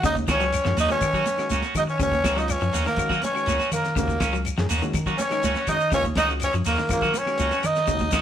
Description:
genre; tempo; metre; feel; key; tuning
afrobeat; 122 BPM; 4/4; straight; Eb minor; A4 = 440 Hz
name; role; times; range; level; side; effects
growling tenor saxophone; melody; 0.0-8.2 s; Bb3 to Eb4; -26 LUFS; equal; none
warm trumpet; second line; 0.0-8.2 s; Bb4 to Eb5; -27 LUFS; right 1 dB; none
overdriven reed electric piano; accompaniment; 0.0-8.1 s; Eb3 to Ab4; -35 LUFS; left 4 dB; none
electric guitar at the edge of break-up; arpeggios; 0.0-8.2 s; Db3 to Gb3; -32 LUFS; left 4 dB; none
fingered electric bass; bass; 0.0-8.2 s; Db2 to Eb3; -28 LUFS; equal; none
cloth-damped thuddy drum kit; drums; 0.0-8.2 s; hi-hat, kick drum, snare drum; -31 LUFS; equal; none
congas; percussion; 0.0-8.2 s; none; -34 LUFS; right 5 dB; none
shekere; percussion; 0.0-8.2 s; none; -35 LUFS; left 4 dB; none
electric guitar at the edge of break-up; stabs; 0.2-8.2 s; Bb3 to Gb4; -29 LUFS; right 3 dB; none
claves; percussion; 0.3-8.2 s; none; -38 LUFS; left 12 dB; none
room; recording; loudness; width
moderate stone room reverb, RT60 1.2 s; band playing live in one room; -20 LUFS; side -10 dB against mid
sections
0.0-8.2 A section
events
none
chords
0.0 Ebm7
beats
| 0.04 0.53 1.02 1.51 | 2.00 2.49 2.98 3.47 | 3.96 4.45 4.94 5.43 | 5.92 6.41 6.90 7.39 | 7.88

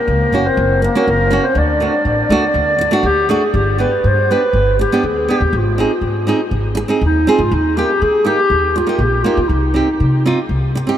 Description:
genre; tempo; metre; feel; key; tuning
klezmer; 121 BPM; 4/4; straight; G phrygian dominant from 3.5 s; A4 = 444 Hz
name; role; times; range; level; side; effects
dark clarinet; melody; 0.0-10.5 s; Eb4 to D5; -16 LUFS; equal; none
breathy trombone; second line; 0.0-3.0 s; A#3 to D4; -24 LUFS; left 2 dB; none
upright bass; bass; 0.1-10.8 s; F#1 to Eb3; -18 LUFS; equal; none
nylon-string guitar; accompaniment; 0.3-11.0 s; A3 to Ab4; -18 LUFS; right 2 dB; none
room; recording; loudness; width
wet huge ambient reverb, RT60 7.1 s; in a vast, echoing space; -12 LUFS; side -10 dB against mid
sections
0.0-3.5 A section; 3.5-11.0 B section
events
none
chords
0.0 F#; 1.6 D; 3.5 G; 5.5 Ab; 7.5 Eb; 9.5 Cm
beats
0.09 0.58 1.07 | 1.57 2.06 2.55 3.05 | 3.54 4.04 4.53 5.03 | 5.52 6.02 6.52 7.01 | 7.51 8.01 8.51 9.00 | 9.50 10.00 10.50

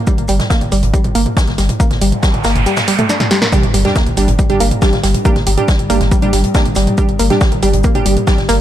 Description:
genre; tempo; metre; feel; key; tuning
driving peak-time techno; 139 BPM; 4/4; straight; G minor; A4 = 440 Hz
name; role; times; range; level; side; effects
warbly dusty pluck; riff; 0.1-8.5 s; G3 to D4; -18 LUFS; equal; chorus, tube saturation, sidechain pumping, ping-pong delay
electronic kick drum; drums; 0.1-8.4 s; none; -15 LUFS; equal; overdrive
swinging big-band drum kit; drums; 0.1-8.6 s; hi-hat, shaker, snare drum; -24 LUFS; left 2 dB; high-pass filter on hats, high-pass filter on snare, high-pass filter on perc, high-pass filter on room
techno drum kit; drums; 0.1-8.6 s; hi-hat, snare drum, toms; -20 LUFS; right 1 dB; sidechain pumping on hats, sidechain pumping on toms
warm sub bass; bass; 0.2-8.6 s; G1; -17 LUFS; equal; overdrive, sidechain pumping, low-pass filter
noise sweep and sub drop; sound effects; 2.1-5.3 s; none; -22 LUFS; right 2 dB; none
wavetable chord stab; stabs; 3.5-8.4 s; G3 to G4; -18 LUFS; right 3 dB; sidechain pumping, ping-pong delay
metallic inharmonic drone; drone; 4.3-8.6 s; G2 to G3; -24 LUFS; left 1 dB; chorus, built-in reverb, sidechain pumping
room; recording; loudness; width
light reverb; none; -11 LUFS; side -12 dB against mid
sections
0.0-3.5 A section; 3.5-8.6 B section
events
noise sweep 2.1-3.5; kick drops out 2.7-3.5; drum fill 3.1-3.5; band accent 3.4; drop 3.5-8.6; impact 3.5-5.3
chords
0.0 G5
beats
| 0.07 0.50 0.94 1.37 | 1.80 2.23 2.66 3.09 | 3.52 3.96 4.39 4.82 | 5.25 5.68 6.12 6.55 | 6.98 7.41 7.84 8.27

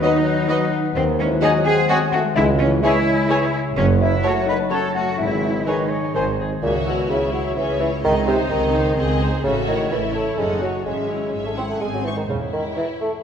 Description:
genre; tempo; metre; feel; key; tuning
cinematic, playful, whimsical film cue; 127 BPM; 3/4; straight; C# minor; A4 = 440 Hz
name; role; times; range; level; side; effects
marimba with soft mallets; melody; 0.0-13.2 s; A#4 to B#5; -27 LUFS; left 4 dB; none
rich studio violin section; melody; 0.0-13.1 s; B#4 to C#6; -35 LUFS; left 2 dB; none
concert flute; second line; 0.0-6.2 s; F#5 to A5; -30 LUFS; left 1 dB; none
rich studio violin section; second line; 0.0-13.2 s; C#4 to B4; -30 LUFS; left 3 dB; none
warm clarinet; second line; 0.0-6.5 s; G#4 to C#5; -30 LUFS; left 1 dB; none
warm cor anglais; second line; 0.0-6.3 s; B#4 to D#5; -30 LUFS; right 3 dB; none
mellow bassoon; accompaniment; 0.0-13.1 s; A#2 to B#3; -24 LUFS; right 2 dB; none
rich studio viola section; accompaniment; 0.0-13.1 s; D#3 to C#5; -30 LUFS; equal; none
dark French horn section; sustained chords; 0.0-6.4 s; D#3 to D#4; -25 LUFS; left 2 dB; none
concert harp; arpeggios; 0.0-13.2 s; E2 to B5; -26 LUFS; left 6 dB; none
rich studio cello section; bass; 0.0-12.7 s; C#2 to B4; -25 LUFS; right 2 dB; none
clear tuba; bass; 1.0-6.5 s; F#1 to D#2; -27 LUFS; right 4 dB; none
rich studio double bass section; bass; 1.0-12.7 s; E1 to D#2; -26 LUFS; right 4 dB; none
room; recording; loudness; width
wet scoring stage reverb, RT60 1.6 s; none; -17 LUFS; side -8 dB against mid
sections
0.0-6.6 A section; 6.6-13.2 B section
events
none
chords
0.0 B/D#; 1.0 G#7/D#; 2.4 C#m; 3.8 F#m; 5.2 G#sus4; 6.1 G#; 6.6 C#m; 8.0 G#/C#; 9.4 A; 10.4 F#m; 10.9 C#m/G#; 11.8 G#; 12.3 C#m/E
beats
0.02 0.49 | 0.96 1.42 1.89 | 2.36 2.83 3.30 | 3.77 4.24 4.71 | 5.19 5.67 6.15 | 6.63 7.10 7.57 | 8.04 8.50 8.97 | 9.44 9.91 10.38 | 10.86 11.33 11.81 | 12.29 12.77

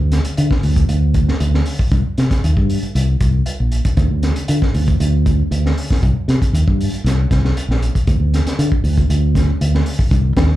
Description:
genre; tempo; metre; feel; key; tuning
afrobeat; 117 BPM; 4/4; straight; C minor; A4 = 440 Hz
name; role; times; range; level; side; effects
fingered electric bass; bass; 0.0-10.6 s; Bb1 to D3; -15 LUFS; equal; none
crunchy breakbeat drum kit; drums; 0.1-10.5 s; hi-hat, kick drum, snare drum; -18 LUFS; equal; none
room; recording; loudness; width
little or no reverb; live gig heard through the venue's PA, club reverb; -14 LUFS; side -15 dB against mid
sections
0.0-10.1 A section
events
none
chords
none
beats
0.38 0.89 1.41 | 1.92 2.43 2.95 3.46 | 3.97 4.49 5.00 5.51 | 6.03 6.54 7.05 7.56 | 8.07 8.58 9.10 9.61 | 10.11

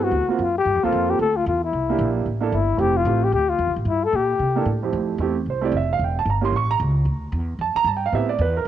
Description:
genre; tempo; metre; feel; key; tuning
jazz, small-group swing and bop; 225 BPM; 4/4; swing 60% on 8ths; F major; A4 = 439 Hz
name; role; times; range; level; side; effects
breathy flugelhorn; melody; 0.0-4.7 s; E4 to A4; -21 LUFS; left 5 dB; cassette tape
warm grand piano; accompaniment; 0.0-8.7 s; F2 to C#6; -23 LUFS; right 7 dB; cassette tape
upright bass; bass; 0.0-8.7 s; E1 to C3; -24 LUFS; equal; none
room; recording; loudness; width
light reverb, small room ambience; home recording on cassette, nothing above 10.7 kHz; -19 LUFS; side -11 dB against mid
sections
0.0-4.9 A section; 4.9-8.7 B section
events
none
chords
0.1 D7alt; 0.7 Gm11; 1.7 C9; 2.8 Fmaj9; 3.9 Gm; 4.4 C13; 4.9 Fmaj9; 6.0 Edim; 6.5 A; 7.1 Dmadd9; 8.1 Am9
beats
0.13 0.40 | 0.66 0.93 1.20 1.46 | 1.73 2.00 2.26 2.53 | 2.80 3.06 3.33 3.60 | 3.86 4.13 4.40 4.66 | 4.93 5.20 5.46 5.73 | 6.00 6.26 6.53 6.80 | 7.07 7.33 7.60 7.87 | 8.13 8.40 8.66

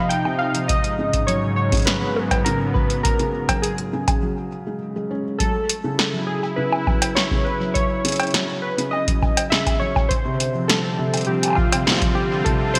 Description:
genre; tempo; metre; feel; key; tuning
IDM; 102 BPM; 4/4; straight; F# dorian; A4 = 440 Hz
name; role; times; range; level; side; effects
warbly lo-fi synth keys; melody; 0.0-12.8 s; F4 to G5; -27 LUFS; equal; chorus, delay
warm analog pad; sustained chords; 0.0-12.8 s; G#2 to F4; -30 LUFS; equal; chorus, sidechain pumping
felt-muted upright piano; arpeggios; 0.0-12.8 s; C3 to C#4; -28 LUFS; equal; vintage 12-bit sampler grit, delay
electro analog drum machine; drums; 0.1-12.8 s; bongos, cowbell, hi-hat, snare drum; -25 LUFS; equal; gated reverb
electronic kick drum; drums; 0.7-12.6 s; none; -26 LUFS; equal; none
room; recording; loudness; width
moderate lush hall reverb, RT60 1.9 s, digital ambience; bright 1980s-style digital production; -21 LUFS; mono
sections
0.0-5.4 A section; 5.4-12.8 B section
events
break 4.2-5.4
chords
0.0 F7sus2; 0.7 G#m9; 5.4 F#m7; 10.1 Dm7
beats
0.11 | 0.69 1.28 1.87 2.46 | 3.05 3.63 4.22 4.81 | 5.40 5.99 6.58 7.17 | 7.75 8.34 8.93 9.52 | 10.11 10.69 11.28 11.87 | 12.46

